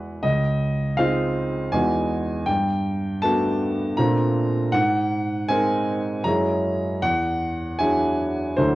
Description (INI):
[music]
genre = classical, impressionist solo piano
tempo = 79 BPM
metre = 3/4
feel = rubato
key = unclear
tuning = A4 = 442 Hz
[part]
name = clear grand piano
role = solo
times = 0.0-8.8 s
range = Db2 to Bb5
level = -20 LUFS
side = equal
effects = none
[sound]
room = light reverb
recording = worn, warbling old tape, cassette tape, warbly pitch drift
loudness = -20 LUFS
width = side -17 dB against mid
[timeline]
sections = 0.0-8.8 A section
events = none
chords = 0.2 Dbmaj9; 1.7 Emaj9; 2.5 Gmaj9; 4.0 Bbmaj9; 4.7 Ab9; 6.3 Gb9; 7.0 E9